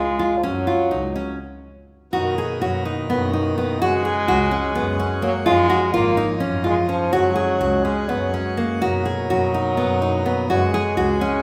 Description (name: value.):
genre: contemporary instrumental, chamber music in an uneven meter.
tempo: 251 BPM (eighths).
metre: 7/8.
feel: straight.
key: F# major.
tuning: A4 = 440 Hz.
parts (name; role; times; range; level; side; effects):
clear French horn; second line; 0.0-11.4 s; D#3 to A#3; -26 LUFS; equal; none.
nylon-string guitar; arpeggios; 0.0-11.4 s; A#3 to G#4; -24 LUFS; equal; none.
clear double bass; bass; 0.0-11.2 s; G#1 to F#2; -29 LUFS; equal; none.
pipe organ, plenum; sustained chords; 2.1-11.4 s; B2 to F#4; -29 LUFS; equal; none.
room: wet recital hall reverb, RT60 1.7 s.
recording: none.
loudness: -20 LUFS.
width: mono.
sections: 0.0-2.1 A section; 2.1-11.4 B section.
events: stop 1.4-2.1.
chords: 0.4 F#5; 2.1 Bmaj7/F#; 3.8 F#sus2; 5.5 C#add9; 7.1 F#sus2; 8.8 Bmaj7/F#; 10.5 F#sus2.